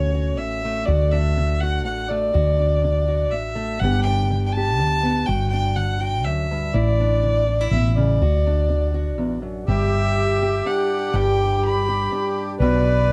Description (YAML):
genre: acoustic folk duo or small band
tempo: 123 BPM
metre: 3/4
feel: straight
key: unclear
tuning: A4 = 442 Hz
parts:
  - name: dark fiddle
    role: melody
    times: 0.0-13.1 s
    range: C#5 to B5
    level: -26 LUFS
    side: equal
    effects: none
  - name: fingerpicked acoustic archtop guitar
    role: accompaniment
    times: 0.0-13.1 s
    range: D2 to G4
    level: -29 LUFS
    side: equal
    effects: none
  - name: woody fretless electric bass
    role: bass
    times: 0.0-13.1 s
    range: G1 to D2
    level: -23 LUFS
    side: equal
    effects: none
  - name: accordion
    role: second line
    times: 9.7-13.1 s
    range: G4 to B4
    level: -26 LUFS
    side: equal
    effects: light tremolo tuning
room: light reverb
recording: dry, close 1970s-style studio recording, lossy compression artefacts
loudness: -21 LUFS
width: mono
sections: 0.0-9.7 A section; 9.7-13.1 B section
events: none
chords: 0.0 Dmaj7; 3.8 Gmaj7; 6.7 Asus4; 8.2 D; 9.7 G; 12.6 Bm